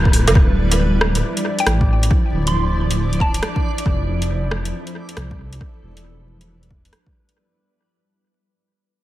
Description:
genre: future garage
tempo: 137 BPM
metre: 4/4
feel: swing 64% on 16ths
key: D dorian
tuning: A4 = 440 Hz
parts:
  - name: granular cloud pad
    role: sustained chords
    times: 0.0-7.3 s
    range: F3 to D5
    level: -25 LUFS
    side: equal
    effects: built-in reverb, vintage 12-bit sampler grit, sidechain pumping
  - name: dark detuned saw bass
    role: bass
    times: 0.0-6.9 s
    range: D1 to C2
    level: -19 LUFS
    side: equal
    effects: tube saturation, sidechain pumping
  - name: deep house drum kit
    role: drums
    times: 0.1-7.3 s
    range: hi-hat, rim click, woodblock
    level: -22 LUFS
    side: right 1 dB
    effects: overdrive, studio reverb, tape echo
  - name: electronic kick drum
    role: drums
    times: 0.1-7.1 s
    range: none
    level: -17 LUFS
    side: equal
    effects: overdrive, studio reverb
  - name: backwards swelling texture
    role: texture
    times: 1.3-7.4 s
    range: D4 to D5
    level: -32 LUFS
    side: equal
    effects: built-in reverb
  - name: mallet-like synth pluck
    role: melody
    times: 1.6-3.6 s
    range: G5 to C6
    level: -26 LUFS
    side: equal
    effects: chorus, phaser, tape echo
room: light reverb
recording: echo-heavy mix, vinyl crackle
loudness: -16 LUFS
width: side -15 dB against mid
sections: 0.4-7.4 A section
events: fade-out 0.4-7.4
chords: 0.4 Dmadd9; 3.9 Fmaj7; 5.6 Em

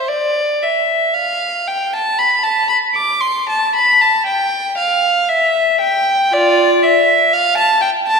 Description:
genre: classical, baroque-style suite movement for unaccompanied violin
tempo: 58 BPM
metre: 3/4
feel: rubato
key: A minor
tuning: A4 = 441 Hz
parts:
  - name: rich violin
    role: solo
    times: 0.0-8.2 s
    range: F4 to D6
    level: -12 LUFS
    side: equal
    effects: none
room: wet scoring stage reverb, RT60 2.0 s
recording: minimal, uncompressed stereo recording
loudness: -12 LUFS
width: side -5 dB against mid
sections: 0.0-8.2 A section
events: none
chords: none

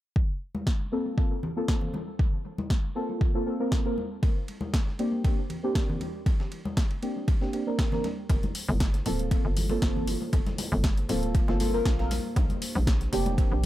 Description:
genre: deep house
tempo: 118 BPM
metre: 4/4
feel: swing 53% on 16ths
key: G minor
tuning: A4 = 439 Hz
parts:
  - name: electronic kick drum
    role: drums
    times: 0.2-13.5 s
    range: none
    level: -25 LUFS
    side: equal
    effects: none
  - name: congas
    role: percussion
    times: 0.5-13.7 s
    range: none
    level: -36 LUFS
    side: left 2 dB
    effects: analog delay
  - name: punchy analog drum machine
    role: drums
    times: 0.7-13.7 s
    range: hi-hat, snare drum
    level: -36 LUFS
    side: equal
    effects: overdrive, analog delay
  - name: deep mellow chord stab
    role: stabs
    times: 0.9-13.5 s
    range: Bb3 to Bb4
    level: -31 LUFS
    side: equal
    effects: chorus, phaser, tape echo
  - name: breakbeat sampler-style drum kit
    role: drums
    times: 4.2-13.7 s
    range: ride cymbal, snare drum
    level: -44 LUFS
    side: right 1 dB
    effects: sidechain pumping on cymbals, high-pass filter on cymbals, high-pass filter on snare, analog delay
  - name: dark analog pad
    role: sustained chords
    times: 9.0-13.7 s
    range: Bb3 to C5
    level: -39 LUFS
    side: right 2 dB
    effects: none
  - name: hollow knocking FM bass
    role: bass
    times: 8.3-13.7 s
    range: D1 to Bb1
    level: -29 LUFS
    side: equal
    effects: tube saturation, sidechain pumping
room: light reverb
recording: echo-heavy mix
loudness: -25 LUFS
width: side -14 dB against mid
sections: 0.2-8.3 A section; 8.3-13.7 B section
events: none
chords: 0.2 Fadd11/Bb; 4.0 Bb69; 8.3 Gm11; 12.1 Bb69

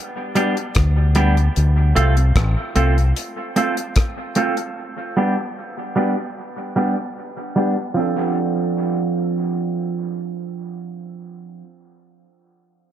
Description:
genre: dub reggae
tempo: 75 BPM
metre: 4/4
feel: straight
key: D dorian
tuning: A4 = 441 Hz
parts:
  - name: semi-hollow electric guitar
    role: accompaniment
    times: 0.4-11.7 s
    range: F3 to A4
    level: -21 LUFS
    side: right 2 dB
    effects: low-pass filter, dub echo
  - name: damped 70s drum kit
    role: drums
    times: 0.4-4.7 s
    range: hi-hat, kick drum, rim click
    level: -21 LUFS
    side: left 1 dB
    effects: none
  - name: deep dub fingered electric bass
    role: bass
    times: 0.8-3.1 s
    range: A1 to D2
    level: -15 LUFS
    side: left 1 dB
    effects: none
room: light reverb, small room ambience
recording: echo-heavy mix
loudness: -17 LUFS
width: side -10 dB against mid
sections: 0.0-8.0 A section; 8.0-11.2 B section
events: filter sweep on clean electric guitar 0.0-8.0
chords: 0.0 Em7 (rootless); 1.6 Dm7 (rootless); 4.8 G; 8.0 Dm7

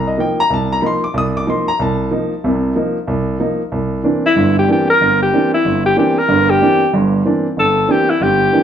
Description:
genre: jazz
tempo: 187 BPM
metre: 4/4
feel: swing 61% on 8ths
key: F mixolydian, C mixolydian from 3.7 s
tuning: A4 = 440 Hz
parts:
  - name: warm grand piano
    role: accompaniment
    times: 0.0-8.6 s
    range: G1 to Eb6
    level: -15 LUFS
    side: right 1 dB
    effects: none
  - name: breathy alto saxophone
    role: melody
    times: 4.3-8.6 s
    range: E4 to Bb4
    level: -13 LUFS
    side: left 2 dB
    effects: plate reverb
room: wet studio reverb, RT60 0.8 s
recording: heard from further back in the room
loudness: -13 LUFS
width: side -9 dB against mid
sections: 0.0-3.7 A section; 3.7-8.6 A section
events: alto saxophone solo 3.7-8.6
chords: 0.0 F7sus4; 3.7 C9

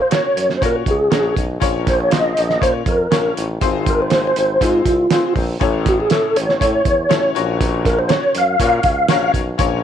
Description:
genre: uptempo 1960s-style soul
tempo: 120 BPM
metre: 4/4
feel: straight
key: unclear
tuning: A4 = 441 Hz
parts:
  - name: mellow tonewheel organ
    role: melody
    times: 0.0-9.3 s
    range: F4 to F5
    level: -16 LUFS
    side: equal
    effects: chorus vibrato, fast rotary speaker
  - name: bright upright piano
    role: accompaniment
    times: 0.0-9.8 s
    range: Ab2 to Db5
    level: -23 LUFS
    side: left 13 dB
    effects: none
  - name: cloth-damped thuddy drum kit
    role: drums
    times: 0.1-9.7 s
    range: hi-hat, kick drum, snare drum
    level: -20 LUFS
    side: right 3 dB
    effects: none
  - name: clear tuba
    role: bass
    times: 0.4-9.8 s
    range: F1 to Bb2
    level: -22 LUFS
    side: equal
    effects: none
room: little or no reverb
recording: 1960s-style stereo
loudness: -14 LUFS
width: side -9 dB against mid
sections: 0.0-9.8 A section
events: none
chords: 0.0 Gb; 1.6 Bbm; 3.6 Fm/Ab; 5.6 A; 7.4 Gb/Bb

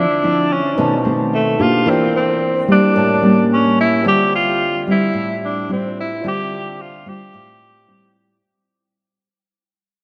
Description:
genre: bossa nova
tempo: 110 BPM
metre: 4/4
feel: straight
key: D minor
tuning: A4 = 440 Hz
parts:
  - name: breathy tenor saxophone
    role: melody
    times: 0.0-8.2 s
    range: A3 to G4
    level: -20 LUFS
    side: equal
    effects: analog delay
  - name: barky tine electric piano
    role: accompaniment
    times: 0.0-8.4 s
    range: D#4 to A5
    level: -26 LUFS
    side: equal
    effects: none
  - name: nylon-string guitar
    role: accompaniment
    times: 0.0-8.4 s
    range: A2 to G4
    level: -20 LUFS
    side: equal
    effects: lush chorus
room: wet lush hall reverb, RT60 2.8 s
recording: dreamy mix soaked in reverb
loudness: -16 LUFS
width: mono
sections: 0.0-4.0 A section; 4.0-8.4 B section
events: fade-out 4.0-8.4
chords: 0.0 Dm9; 0.8 B7b9; 1.9 Em7b5; 3.0 A7b9; 4.0 Dm11

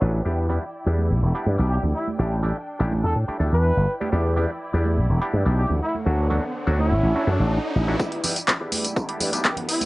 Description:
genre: filtered disco house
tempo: 124 BPM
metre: 4/4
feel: straight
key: E dorian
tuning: A4 = 441 Hz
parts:
  - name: auto-wah clav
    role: accompaniment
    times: 0.0-9.9 s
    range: F#3 to B4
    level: -30 LUFS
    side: equal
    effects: phaser, sidechain pumping, low-pass filter, cassette tape
  - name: bright symphonic string section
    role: sustained chords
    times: 0.0-9.9 s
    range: D3 to G5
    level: -34 LUFS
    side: equal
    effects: vintage 12-bit sampler grit, sidechain pumping, low-pass filter, cassette tape
  - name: slap bass with an envelope filter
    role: bass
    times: 0.0-9.7 s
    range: E1 to A2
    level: -21 LUFS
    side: equal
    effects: sidechain pumping, high-pass filter, low-pass filter
  - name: maracas and congas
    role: percussion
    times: 0.3-9.9 s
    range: none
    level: -33 LUFS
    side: right 5 dB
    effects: sidechain pumping on perc, low-pass filter on perc
  - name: clear horn section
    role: melody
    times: 1.7-9.8 s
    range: E4 to B4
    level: -28 LUFS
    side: equal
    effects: sidechain pumping, low-pass filter, cassette tape
  - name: riser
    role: sound effects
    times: 5.2-9.9 s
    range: none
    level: -31 LUFS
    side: equal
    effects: none
  - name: electronic kick drum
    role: drums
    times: 8.0-9.5 s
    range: none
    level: -27 LUFS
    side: equal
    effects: overdrive, high-pass filter on kick
  - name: punchy analog drum machine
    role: drums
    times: 8.0-9.9 s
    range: handclaps, hi-hat, tambourine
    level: -23 LUFS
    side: equal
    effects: overdrive, sidechain pumping on perc, sidechain pumping on hats
room: light reverb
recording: home recording on cassette, nothing above 10.4 kHz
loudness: -20 LUFS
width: side -20 dB against mid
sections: 0.0-8.0 A section; 8.0-9.9 B section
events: filter sweep 0.0-8.0; riser 5.2-8.0, 8.0-9.9; build-up 8.0-9.9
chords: 0.3 Em7; 2.2 A7sus4; 3.9 Em7; 5.8 Dmaj7; 8.0 Em7

